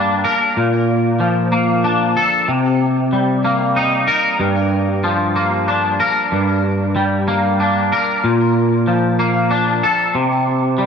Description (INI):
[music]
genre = rock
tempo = 63 BPM (dotted quarters)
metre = 6/8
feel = straight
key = unclear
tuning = A4 = 438 Hz
[part]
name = twangy electric guitar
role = solo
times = 0.0-10.9 s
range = G2 to Bb4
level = -14 LUFS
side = equal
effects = ensemble chorus, digital delay
[sound]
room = light reverb, digital ambience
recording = dark, warm production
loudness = -14 LUFS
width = side -6 dB against mid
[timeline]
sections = 0.0-10.9 A section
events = none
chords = 0.0 Gm; 0.6 Bbmaj7; 2.5 Cm7; 4.4 Gm7; 6.3 Gm; 8.2 Bbmaj7; 10.1 N.C.